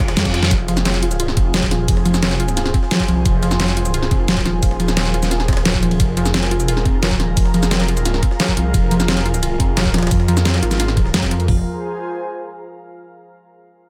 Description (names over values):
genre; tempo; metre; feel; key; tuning
dark technical drum and bass; 175 BPM; 4/4; straight; F minor; A4 = 441 Hz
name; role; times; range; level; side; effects
deep dark ambient pad; sustained chords; 0.0-11.6 s; F4 to F5; -32 LUFS; equal; chorus, built-in reverb, sidechain pumping
phased detuned saw bass; bass; 0.0-11.6 s; Eb1 to F2; -22 LUFS; equal; phaser, overdrive
drum and bass drum kit; drums; 0.0-11.6 s; hi-hat, kick drum, toms; -20 LUFS; equal; none
dubstep drum kit; drums; 0.0-11.5 s; cabasa, hi-hat, snare drum, toms; -22 LUFS; equal; overdrive
jungle sampler-style drum kit; drums; 0.0-11.4 s; hi-hat, ride cymbal, snare drum; -34 LUFS; equal; none
reverse cymbal; sound effects; 0.0-0.5 s; none; -29 LUFS; equal; none
airy breathy pad; texture; 0.0-12.8 s; F4 to Bb5; -30 LUFS; equal; chorus, sidechain pumping
warbly dusty pluck; arpeggios; 0.5-11.6 s; F3 to F4; -25 LUFS; equal; chorus, sidechain pumping, digital delay
room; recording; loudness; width
light reverb; none; -17 LUFS; mono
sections
0.0-11.5 A section; 11.5-12.9 B section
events
drop 0.0-11.5; reverse cymbal 0.0-0.5; drum fill 0.2-0.5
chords
0.0 Fm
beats
0.17 | 0.51 0.85 1.20 1.54 | 1.88 2.23 2.57 2.91 | 3.25 3.60 3.94 4.28 | 4.63 4.97 5.31 5.66 | 6.00 6.34 6.68 7.03 | 7.37 7.71 8.05 8.40 | 8.74 9.08 9.43 9.77 | 10.11 10.46 10.80 11.14 | 11.48 11.83 12.17 12.51